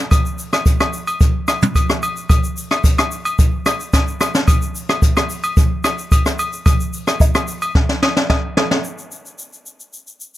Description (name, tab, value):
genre	amapiano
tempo	110 BPM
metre	4/4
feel	straight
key	none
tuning	none
part	jazz brush drum kit	drums	0.1-10.4 s	hi-hat, kick drum, rim click, shaker, snare drum, toms	-15 LUFS	equal	none
part	agogo bells and woodblock	percussion	0.1-8.7 s	none	-23 LUFS	left 1 dB	none
room	small room ambience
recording	dry, gritty hardware recording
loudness	-14 LUFS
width	side -14 dB against mid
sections	0.0-8.8 A section; 8.8-10.4 B section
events	drop 0.0-8.8; drum fill 7.8-8.8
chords	none